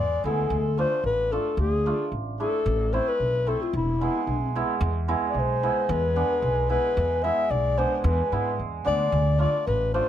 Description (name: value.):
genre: klezmer.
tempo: 112 BPM.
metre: 2/4.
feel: straight.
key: E phrygian dominant.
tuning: A4 = 439 Hz.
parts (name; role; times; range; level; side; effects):
breathy clarinet; melody; 0.0-10.1 s; E4 to E5; -25 LUFS; left 4 dB; none.
hammered dulcimer; accompaniment; 0.0-10.1 s; G#3 to F4; -29 LUFS; right 6 dB; none.
upright bass; bass; 0.0-10.0 s; E1 to G#2; -26 LUFS; equal; none.
room: little or no reverb.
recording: none.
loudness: -22 LUFS.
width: side -11 dB against mid.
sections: 0.0-4.8 A section; 4.8-10.1 A section.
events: none.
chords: 0.0 E; 0.5 Dm; 2.7 Am; 3.7 E; 9.1 Dm.